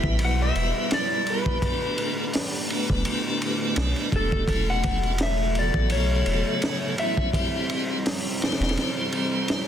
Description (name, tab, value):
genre	trip hop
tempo	84 BPM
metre	4/4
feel	swing 54% on 16ths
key	unclear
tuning	A4 = 440 Hz
part	electric slide guitar	melody	0.0-9.4 s	A4 to F#5	-29 LUFS	left 3 dB	tape echo
part	tonewheel organ	accompaniment	0.0-9.7 s	C#3 to C5	-29 LUFS	equal	slow rotary speaker, tremolo, tape echo
part	string machine, cellos	sustained chords	0.0-9.7 s	G3 to E5	-31 LUFS	right 1 dB	ensemble chorus, vintage 12-bit sampler grit
part	warm sub bass	bass	0.0-8.8 s	E1 to B1	-25 LUFS	equal	none
part	crunchy breakbeat drum kit	drums	0.0-9.7 s	hi-hat, kick drum, ride cymbal, snare drum	-27 LUFS	equal	none
room	light reverb, studio reverb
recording	dense, heavily limited modern master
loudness	-22 LUFS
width	side -9 dB against mid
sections	0.0-9.7 A section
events	none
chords	0.0 Em; 1.6 Gadd9; 4.5 A6/E; 7.3 C